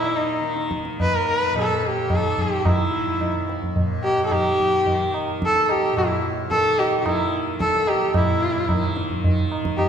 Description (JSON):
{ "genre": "indian classical, Hindustani", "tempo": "109 BPM", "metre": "5/4", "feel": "straight", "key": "unclear", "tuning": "A4 = 439 Hz", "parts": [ { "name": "clear sarangi", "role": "melody", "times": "0.0-9.9 s", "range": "Eb4 to Cb5", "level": "-21 LUFS", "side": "equal", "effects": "none" }, { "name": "tanpura", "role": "drone", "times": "0.0-9.9 s", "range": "Eb2 to Eb3", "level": "-29 LUFS", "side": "equal", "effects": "none" }, { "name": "tabla", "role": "percussion", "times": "0.4-9.9 s", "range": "none", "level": "-24 LUFS", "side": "right 1 dB", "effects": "none" } ], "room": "wet scoring stage reverb, RT60 1.9 s", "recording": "recorded in a church or concert hall", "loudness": "-19 LUFS", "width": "side -8 dB against mid", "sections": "0.0-8.2 A section; 8.2-9.9 B section", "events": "speeding up 0.0-9.9", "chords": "none" }